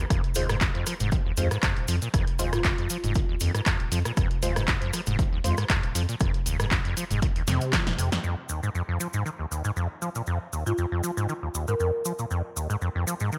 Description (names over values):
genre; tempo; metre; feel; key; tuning
acid house; 118 BPM; 4/4; swing 54% on 16ths; F minor pentatonic; A4 = 440 Hz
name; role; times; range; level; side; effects
acid bass, saw; riff; 0.0-13.4 s; Eb2 to F3; -31 LUFS; equal; overdrive, analog chorus, sidechain pumping
round analog bass; bass; 0.0-8.1 s; Eb1 to F2; -32 LUFS; equal; tube saturation, sidechain pumping
electronic kick drum; drums; 0.1-7.8 s; none; -29 LUFS; equal; none
punchy analog drum machine; drums; 0.1-8.2 s; handclaps, hi-hat, rim click, snare drum; -32 LUFS; equal; none
cabasa; percussion; 0.1-13.4 s; none; -38 LUFS; equal; none
filtered dub chord stab; stabs; 0.4-5.5 s; Ab3 to C5; -37 LUFS; equal; phaser, ensemble chorus, analog delay
marimba with soft mallets; melody; 2.5-2.7, 10.7-11.9 s; F4 to Bb4; -35 LUFS; equal; analog delay
room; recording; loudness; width
digital ambience; none; -27 LUFS; mono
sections
0.0-8.2 A section; 8.2-13.4 B section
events
drop 0.0-8.2; drum fill 7.5-8.2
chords
0.0 Fm